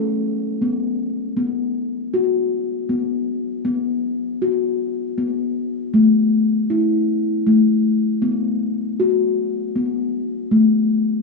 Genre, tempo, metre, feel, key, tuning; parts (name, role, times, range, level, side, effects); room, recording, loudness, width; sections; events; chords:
world meditative, meditative tuned percussion; 79 BPM; 3/4; straight; A4 = 437 Hz
steel tongue drum; solo; 0.0-11.2 s; A3 to A4; -17 LUFS; left 3 dB; slapback echo
moderate plate reverb, RT60 2.7 s; small room reverb; -17 LUFS; side -2 dB against mid
0.0-3.7 A section; 3.7-11.2 B section
0.0 N.C.; 1.4 B5; 5.9 A5; 8.2 B5; 10.5 A5